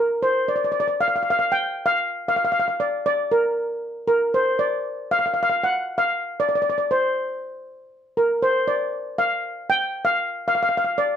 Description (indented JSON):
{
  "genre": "calypso",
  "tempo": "117 BPM",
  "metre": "4/4",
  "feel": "straight",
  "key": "unclear",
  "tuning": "A4 = 439 Hz",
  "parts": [
    { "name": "steel pan", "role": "solo", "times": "0.0-11.2 s", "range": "Bb4 to G5", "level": "-20 LUFS", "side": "equal", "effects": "none" }
  ],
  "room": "moderate studio reverb, RT60 0.5 s",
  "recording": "none",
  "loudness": "-20 LUFS",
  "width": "side -9 dB against mid",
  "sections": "0.0-11.2 A section",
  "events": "none",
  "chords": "none"
}